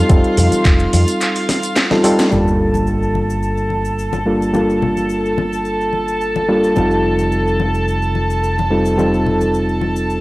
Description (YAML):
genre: nu-disco, nu disco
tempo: 108 BPM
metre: 4/4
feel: straight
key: unclear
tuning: A4 = 440 Hz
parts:
  - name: reed electric piano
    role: accompaniment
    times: 0.0-10.2 s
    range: G3 to A4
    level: -17 LUFS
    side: equal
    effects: sidechain pumping, low-pass filter, cassette tape
  - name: rich chamber violin section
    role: sustained chords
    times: 0.0-10.2 s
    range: F4 to A5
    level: -21 LUFS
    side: equal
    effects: vintage 12-bit sampler grit, sidechain pumping, low-pass filter, cassette tape
  - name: fingered electric bass with an envelope filter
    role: bass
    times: 0.1-10.2 s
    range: F1 to F2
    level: -20 LUFS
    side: equal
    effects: none
  - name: electronic kick drum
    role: drums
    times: 0.1-0.8 s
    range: none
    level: -12 LUFS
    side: equal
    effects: cassette tape
  - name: house drum kit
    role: drums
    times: 0.1-2.3 s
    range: cabasa, handclaps, hi-hat, snare drum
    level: -19 LUFS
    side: equal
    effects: cassette tape
  - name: maracas and congas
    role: percussion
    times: 0.1-10.2 s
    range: none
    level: -26 LUFS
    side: left 5 dB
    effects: none
  - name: sub drop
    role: sound effects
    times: 2.3-4.5 s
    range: none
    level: -26 LUFS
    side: equal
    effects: none
room: light reverb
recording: home recording on cassette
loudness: -14 LUFS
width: side -20 dB against mid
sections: 0.0-2.3 A section; 2.3-10.2 B section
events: break 1.2-2.3; drum fill 1.5-2.3; band accent 2.2; impact 2.3-4.5; filter sweep on violin section 2.3-10.2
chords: 0.0 F9; 2.3 Gm9; 6.8 F9